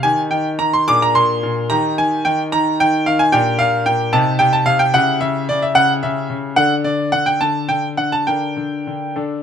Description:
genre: classical-period piano sonatina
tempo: 73 BPM (dotted quarters)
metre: 6/8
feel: uneven beats, rubato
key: G minor from 3.3 s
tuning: A4 = 441 Hz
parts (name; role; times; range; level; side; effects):
- bright grand piano; solo; 0.0-9.4 s; Bb2 to D6; -14 LUFS; equal; none
room: light reverb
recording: minimal, uncompressed stereo recording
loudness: -14 LUFS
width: side -8 dB against mid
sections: 0.0-9.4 A section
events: none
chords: 0.0 Eb; 0.9 Bb7; 1.7 Eb; 3.3 Gm/Bb; 4.1 Cm; 4.9 C#dim; 6.6 D5; 8.3 Gm/D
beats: | 0.04 0.87 | 1.70 2.52 | 3.33 4.13 | 4.94 5.76 | 6.57 7.41 | 8.28 9.17

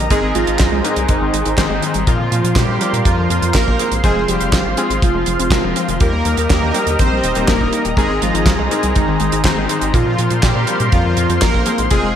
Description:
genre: italo disco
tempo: 122 BPM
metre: 4/4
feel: straight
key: unclear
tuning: A4 = 438 Hz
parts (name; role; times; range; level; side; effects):
- lush unison pad; sustained chords; 0.0-12.2 s; F4 to C6; -21 LUFS; equal; chorus
- analog pluck; arpeggios; 0.0-12.1 s; Ab2 to Eb4; -26 LUFS; right 1 dB; chorus, ping-pong delay
- clear electric grand piano; stabs; 0.0-12.2 s; Ab2 to D5; -24 LUFS; left 6 dB; none
- round analog bass; bass; 0.0-12.1 s; Eb1 to Bb2; -20 LUFS; equal; none
- analog synth brass; melody; 0.1-12.2 s; Eb3 to C5; -20 LUFS; equal; chorus, ping-pong delay
- damped 70s drum kit; drums; 0.1-12.0 s; handclaps, hi-hat, snare drum; -21 LUFS; right 1 dB; small room ambience, gated reverb
- kick drum; drums; 0.1-12.0 s; none; -17 LUFS; equal; small room ambience
room: moderate plate reverb, RT60 1.4 s, small room ambience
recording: bright 1980s-style digital production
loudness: -13 LUFS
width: side -9 dB against mid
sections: 0.0-12.2 A section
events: none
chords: 0.1 Abadd9; 2.1 Bbsus2; 4.0 Fm; 6.0 Eb; 8.0 Abadd9; 9.9 Bbsus2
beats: | 0.10 0.60 1.09 1.58 | 2.07 2.56 3.06 3.55 | 4.04 4.53 5.02 5.51 | 6.01 6.50 6.99 7.48 | 7.97 8.47 8.96 9.45 | 9.94 10.43 10.93 11.42 | 11.91

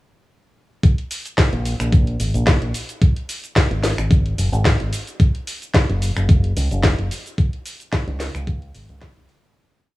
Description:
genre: nu-disco, nu disco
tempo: 110 BPM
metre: 4/4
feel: swing 54% on 16ths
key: unclear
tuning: A4 = 440 Hz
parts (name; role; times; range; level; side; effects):
- electronic kick drum; drums; 0.8-9.1 s; none; -15 LUFS; equal; none
- house drum kit; drums; 0.8-9.5 s; finger snaps, hi-hat, shaker, snare drum; -24 LUFS; left 1 dB; none
- fingered electric bass with an envelope filter; bass; 1.5-9.3 s; Gb1 to Db2; -21 LUFS; equal; none
room: little or no reverb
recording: dry, gritty hardware recording, small room ambience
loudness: -17 LUFS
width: side -18 dB against mid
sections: 0.8-9.6 drop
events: drop 0.8-9.6; fade-out 6.7-9.6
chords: none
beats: | 0.83 1.38 1.92 2.47 | 3.02 3.56 4.11 4.65 | 5.20 5.74 6.29 6.83 | 7.38 7.92 8.47 9.02

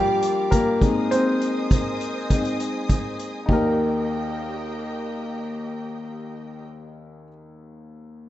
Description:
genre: piano-driven pop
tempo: 101 BPM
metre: 4/4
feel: straight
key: Eb major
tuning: A4 = 437 Hz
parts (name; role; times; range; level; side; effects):
- warm concert grand piano; accompaniment; 0.0-8.3 s; Eb2 to C5; -24 LUFS; left 1 dB; none
- warm studio string section; sustained chords; 0.0-6.6 s; Bb3 to Eb6; -33 LUFS; right 1 dB; none
- soft-mallet drum kit; drums; 0.2-3.6 s; hi-hat, kick drum, ride cymbal; -22 LUFS; equal; none
room: moderate plate reverb, RT60 1.9 s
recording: rough home demo mix, nothing above 7.9 kHz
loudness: -21 LUFS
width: side -14 dB against mid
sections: 0.0-3.5 A section; 3.5-5.9 B section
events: grand piano solo 0.0-3.5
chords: 0.0 Bb; 0.8 Ab; 3.5 Eb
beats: 0.52 | 1.11 1.71 2.30 2.90 | 3.49 4.09 4.68 5.28

